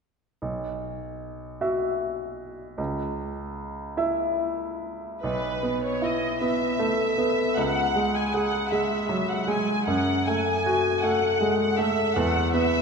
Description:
cinematic, emotional film score for orchestra; 51 BPM (dotted quarters); 6/8; rubato; A4 = 442 Hz
bright grand piano; accompaniment; 0.4-12.8 s; B1 to E5; -25 LUFS; right 1 dB
rich symphonic violin section; melody; 5.2-12.8 s; B4 to G#5; -27 LUFS; left 2 dB
wet concert hall reverb, RT60 2.2 s; -23 LUFS; side -5 dB against mid
0.4-5.2 A section; 5.2-12.8 B section
0.4 Bsus4; 2.8 C#m; 5.2 Bsus4; 7.6 C#5; 9.9 F#m; 12.2 Esus2

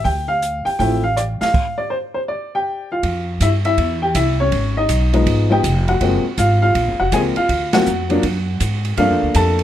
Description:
jazz piano trio; 161 BPM; 4/4; swing 65% on 8ths; D minor; A4 = 440 Hz
warm upright piano; melody; 0.0-9.6 s; F3 to A5; -18 LUFS; left 1 dB; plate reverb
upright bass; bass; 0.1-9.6 s; F1 to Ab2; -19 LUFS; equal
open jazz drum kit; drums; 0.1-9.6 s; crash cymbal, hi-hat, kick drum, ride cymbal, rim click, snare drum; -24 LUFS; right 3 dB
little or no reverb; -15 LUFS; side -11 dB against mid
0.0-3.0 A section; 3.0-9.6 B section
stop 1.5-3.0; band accent 7.7
0.0 Dm; 2.3 Dmadd11; 3.0 Fsus2; 4.5 Abm; 5.3 Fm9b5; 6.0 Gbmaj9#11; 7.5 D(#9); 9.0 Gm9

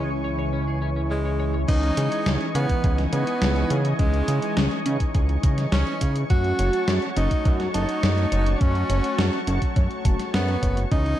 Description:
synthwave; 104 BPM; 4/4; straight; C# minor; A4 = 440 Hz
breathy tenor saxophone; melody; 0.0-11.2 s; G#3 to F#4; -28 LUFS; equal; tape echo
lush unison pad; sustained chords; 0.0-11.2 s; E3 to C#6; -31 LUFS; right 1 dB; chorus, sidechain pumping
twelve-string electric guitar; riff; 0.0-1.6 s; C#4 to C#5; -38 LUFS; left 4 dB; analog chorus, vintage 12-bit sampler grit, digital delay
mellow synth brass; stabs; 0.0-11.2 s; E3 to F#4; -32 LUFS; left 1 dB; chorus, phaser, digital delay
fat analog bass; bass; 0.0-11.1 s; F#1 to C#3; -24 LUFS; equal; sidechain pumping
electric guitar at the edge of break-up; arpeggios; 1.7-11.2 s; C#4 to A5; -33 LUFS; right 2 dB; digital delay
electronic kick drum; drums; 1.7-11.0 s; -21 LUFS; equal; small room ambience
gated 80s digital drum machine; drums; 1.7-11.2 s; crash cymbal, hi-hat, snare drum; -29 LUFS; left 1 dB; gated reverb, gated reverb snare, low-pass filter on hats, small room ambience, low-pass filter on cymbals, low-pass filter on snare
light reverb, digital ambience; dark, warm production; -20 LUFS; side -12 dB against mid
0.0-1.7 A section; 1.7-11.2 B section
0.0 C#m; 1.7 C#madd9; 6.3 F#m

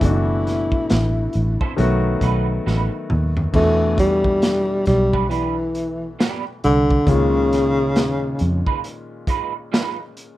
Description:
R&B, neo-soul; 68 BPM; 4/4; swing 60% on 16ths; A4 = 439 Hz
breathy tenor saxophone; melody; 0.0-8.8 s; C#3 to E4; -19 LUFS; left 1 dB; slapback echo
warm grand piano; accompaniment; 0.0-10.4 s; A#2 to F#4; -26 LUFS; left 3 dB
vintage muted fingered electric bass; bass; 0.0-8.6 s; F#1 to E#2; -21 LUFS; equal
crunchy breakbeat drum kit; drums; 0.0-10.4 s; crash cymbal, hi-hat, kick drum, snare drum, toms; -22 LUFS; equal
electric guitar through a small old amp; second line; 1.6-10.0 s; G#3 to C5; -26 LUFS; right 9 dB; ensemble chorus
light reverb; rough home demo mix; -17 LUFS; side -15 dB against mid
0.0-3.5 A section; 3.5-10.4 A section
drum fill 2.7-3.5
0.0 F#m7; 1.8 B7; 3.5 Em7; 7.1 C#add9

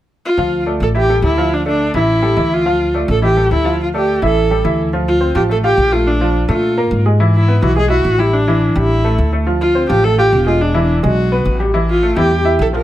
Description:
latin; 211 BPM; 4/4; straight; D minor; A4 = 442 Hz
dark viola; melody; 0.3-12.8 s; D4 to Bb4; -16 LUFS; equal
clear upright piano; accompaniment; 0.4-12.8 s; E3 to F5; -18 LUFS; equal
upright bass; bass; 0.4-12.8 s; E1 to Bb2; -16 LUFS; equal
light reverb; -12 LUFS; side -13 dB against mid
0.4-4.9 A section; 4.9-12.8 B section
0.4 Dm; 0.9 A5; 1.5 Dm; 2.1 A5; 2.7 Dm; 3.2 A5; 3.8 Dm; 4.4 A5; 4.9 Dm7; 6.1 Bbmaj7; 7.2 E; 8.3 A7sus4; 8.9 A5; 9.5 Dm7; 10.6 E7; 11.7 A5

